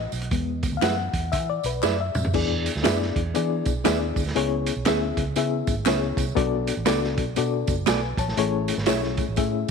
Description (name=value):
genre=uptempo 1960s-style soul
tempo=119 BPM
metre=4/4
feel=swing 61% on 8ths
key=unclear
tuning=A4 = 440 Hz
part: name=reed electric piano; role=accompaniment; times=0.0-9.7 s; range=E3 to A5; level=-26 LUFS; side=left 10 dB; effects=fast tremolo
part: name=vintage muted fingered electric bass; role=bass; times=0.0-9.6 s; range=F#1 to E3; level=-28 LUFS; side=right 2 dB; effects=none
part: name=vintage drum kit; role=drums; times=0.1-9.7 s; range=crash cymbal, hi-hat, kick drum, snare drum, toms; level=-27 LUFS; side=right 2 dB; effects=none
part: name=tambourine and handclaps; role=percussion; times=0.1-9.7 s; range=none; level=-36 LUFS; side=left 1 dB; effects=none
part: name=direct-recorded clean electric guitar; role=stabs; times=0.8-9.0 s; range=B3 to E5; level=-28 LUFS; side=right 16 dB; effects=none
room=light reverb, small room ambience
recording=1960s-style stereo with parts hard left and right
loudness=-22 LUFS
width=side -5 dB against mid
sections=0.0-2.3 A section; 2.3-9.7 B section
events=reed electric piano solo 0.0-2.3; drum fill 1.8-2.3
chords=0.3 E; 2.3 E7; 4.4 C#m7; 6.4 Bm7; 8.4 Amaj7